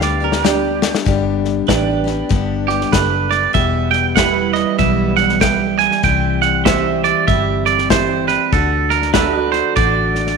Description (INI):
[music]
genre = honky-tonk and classic country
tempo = 96 BPM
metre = 4/4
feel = swing 61% on 8ths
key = G major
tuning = A4 = 440 Hz
[part]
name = mandolin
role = melody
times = 0.0-0.8 s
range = B4 to G5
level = -34 LUFS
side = left 4 dB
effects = none
[part]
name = twangy electric guitar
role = second line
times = 0.0-10.4 s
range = G4 to Ab5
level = -17 LUFS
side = right 11 dB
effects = tape echo
[part]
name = picked steel-string acoustic guitar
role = accompaniment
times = 0.0-10.4 s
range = E2 to G4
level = -22 LUFS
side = left 12 dB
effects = none
[part]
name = pedal steel guitar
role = sustained chords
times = 0.0-10.4 s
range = G3 to G5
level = -22 LUFS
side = right 13 dB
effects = lush chorus
[part]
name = vintage muted fingered electric bass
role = bass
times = 0.0-10.4 s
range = E1 to D2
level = -22 LUFS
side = equal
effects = none
[part]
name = natural country drum kit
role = drums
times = 0.0-10.3 s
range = hi-hat, kick drum, snare drum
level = -19 LUFS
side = left 4 dB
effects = none
[part]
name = warm upright piano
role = accompaniment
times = 0.4-9.7 s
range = D4 to D5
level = -24 LUFS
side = right 12 dB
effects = none
[sound]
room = moderate plate reverb, RT60 1.8 s, small room ambience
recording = 1960s-style stereo with parts hard left and right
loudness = -13 LUFS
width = side -5 dB against mid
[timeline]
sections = 0.0-1.1 A section; 1.1-10.4 B section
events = drum fill 0.0-1.1; clean electric guitar solo 1.1-10.4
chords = 0.0 G; 3.6 Em; 6.0 C; 8.5 D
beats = 0.44 | 1.06 1.68 2.31 2.93 | 3.55 4.17 4.79 5.42 | 6.04 6.66 7.28 7.90 | 8.53 9.15 9.77